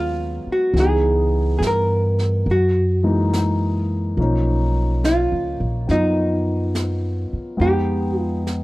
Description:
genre	jazz ballad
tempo	70 BPM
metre	4/4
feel	swing 66% on 8ths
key	unclear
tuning	A4 = 440 Hz
part	vintage hollow-body jazz guitar	melody	0.0-8.4 s	D#4 to Bb4	-21 LUFS	right 1 dB	none
part	warm grand piano	accompaniment	0.0-8.6 s	Fb3 to G5	-24 LUFS	left 2 dB	none
part	upright bass	bass	0.0-8.6 s	A#1 to G2	-20 LUFS	equal	none
part	jazz brush drum kit	drums	0.8-8.6 s	brushed snare drum, hi-hat, snare drum	-32 LUFS	right 1 dB	none
room	small room ambience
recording	dry, close 1970s-style studio recording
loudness	-17 LUFS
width	side -19 dB against mid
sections	0.0-8.6 A section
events	none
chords	0.0 Abm7; 0.7 Dbm7; 2.5 Gb13; 4.2 Bmaj9#11; 7.6 Fm7b5

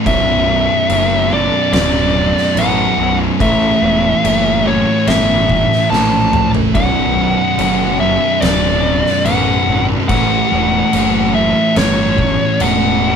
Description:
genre	stoner and doom metal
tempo	72 BPM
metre	4/4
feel	straight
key	B minor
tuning	A4 = 440 Hz
part	thick fuzz guitar	riff	0.0-13.2 s	B1 to A3	-19 LUFS	left 6 dB	distortion
part	thick fuzz guitar	riff	0.0-13.2 s	B1 to A3	-18 LUFS	right 6 dB	distortion
part	fuzz lead guitar	melody	0.1-13.2 s	C#5 to A5	-16 LUFS	equal	distortion
part	fuzz picked electric bass	bass	0.1-13.2 s	B0 to A#1	-20 LUFS	equal	overdrive
part	oversized low-tuned drum kit	drums	0.1-12.8 s	crash cymbal, kick drum, snare drum, toms	-20 LUFS	left 2 dB	none
room	moderate small room reverb, RT60 0.6 s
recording	band playing live in one room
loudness	-11 LUFS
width	side -7 dB against mid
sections	0.0-13.2 A section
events	drum fill 5.9-6.8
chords	0.1 Bm; 3.4 A5; 6.8 Bm; 10.1 A

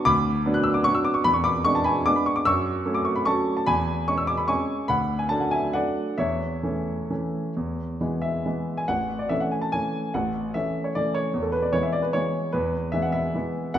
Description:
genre	classical, piano waltz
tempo	126-159 BPM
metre	3/4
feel	rubato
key	A major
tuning	A4 = 441 Hz
part	warm grand piano	solo	0.0-13.8 s	A1 to F#6	-22 LUFS	equal	none
room	wet recital hall reverb, RT60 1.7 s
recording	none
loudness	-22 LUFS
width	side -10 dB against mid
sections	0.0-8.9 A section; 8.9-13.8 B section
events	none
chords	0.0 Bm/D; 1.3 E7; 2.5 F#m7; 3.7 C#m/E; 4.9 D69; 6.2 A/E; 7.6 E; 8.9 A; 11.3 E

